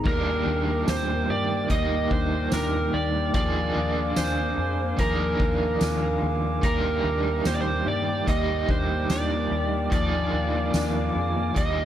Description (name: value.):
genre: dream pop.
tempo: 73 BPM.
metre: 4/4.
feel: straight.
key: Eb major.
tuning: A4 = 440 Hz.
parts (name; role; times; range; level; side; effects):
overdriven semi-hollow guitar; accompaniment; 0.0-11.8 s; Eb3 to Ab4; -29 LUFS; right 3 dB; tremolo, lush chorus.
glass harmonica; sustained chords; 0.0-11.8 s; Bb4 to D6; -32 LUFS; equal; none.
mellow electric guitar; arpeggios; 0.0-11.8 s; F3 to Bb4; -31 LUFS; left 4 dB; ensemble chorus, digital delay.
overdriven slide guitar; melody; 0.1-11.8 s; Bb4 to Eb5; -28 LUFS; right 2 dB; digital delay.
vintage muted fingered electric bass; bass; 0.1-11.8 s; Eb2 to G2; -29 LUFS; equal; none.
soft-mallet drum kit; drums; 0.1-11.8 s; crash cymbal, hi-hat, kick drum, snare drum, tambourine; -30 LUFS; equal; none.
room: light reverb, small room ambience.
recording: none.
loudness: -22 LUFS.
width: side -11 dB against mid.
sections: 0.1-11.8 A section.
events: none.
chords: 0.1 Ebmaj7; 3.3 Bb7/Eb.